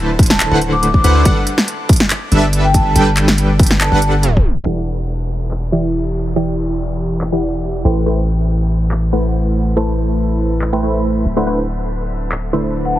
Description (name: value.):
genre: future bass.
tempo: 141 BPM.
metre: 4/4.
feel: half-time.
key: E minor.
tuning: A4 = 440 Hz.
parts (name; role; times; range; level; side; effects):
wide unison pluck; arpeggios; 0.0-4.6 s; E5 to A5; -28 LUFS; left 1 dB; phaser, sidechain pumping.
supersaw stab; riff; 0.0-13.0 s; D3 to B5; -18 LUFS; right 1 dB; sidechain pumping, low-pass filter, tape echo.
long sustained 808-style bass; bass; 0.0-13.0 s; D1 to D2; -17 LUFS; equal; sidechain pumping.
dubstep drum kit; drums; 0.2-12.4 s; crash cymbal, handclaps, hi-hat, snare drum; -18 LUFS; equal; low-pass filter on hats, low-pass filter on snare, low-pass filter on cymbals.
electronic kick drum; drums; 0.2-4.4 s; none; -13 LUFS; equal; none.
vibraphone with medium mallets; melody; 0.3-4.0, 12.9-13.0 s; F#5 to D6; -20 LUFS; left 1 dB; vintage 12-bit sampler grit, sidechain pumping, tape echo.
downlifter; sound effects; 4.8-8.1 s; none; -40 LUFS; equal; none.
room: light reverb, digital ambience.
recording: heavily compressed radio sound, low-pass filter, tape stop.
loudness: -13 LUFS.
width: side -14 dB against mid.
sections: 0.0-4.7 A section; 4.7-13.0 B section.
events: drop 0.0-4.7; tape stop 4.2-4.7; filter sweep on drum 4.7-13.0; filter sweep 4.7-13.0.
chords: 0.0 D13; 1.3 Gmaj9; 4.7 Em9; 7.8 Am7; 11.3 D13.